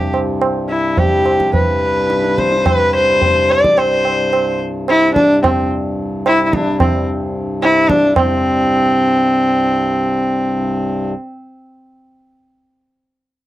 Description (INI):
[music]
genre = indian classical, Hindustani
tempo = 109 BPM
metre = 4/4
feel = straight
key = C raga hamsadhwani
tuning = A4 = 440 Hz
[part]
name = rich sarangi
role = melody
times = 0.0-11.1 s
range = C4 to D5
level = -14 LUFS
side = equal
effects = none
[part]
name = hand-pumped harmonium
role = drone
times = 0.0-11.1 s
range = C2 to G2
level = -21 LUFS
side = left 2 dB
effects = none
[part]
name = tabla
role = percussion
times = 0.1-8.4 s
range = none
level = -18 LUFS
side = right 2 dB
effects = none
[sound]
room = little or no reverb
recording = dry, close 1970s-style studio recording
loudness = -12 LUFS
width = side -14 dB against mid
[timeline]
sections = 0.0-8.2 A section; 8.2-10.3 B section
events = speeding up 0.0-10.3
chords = none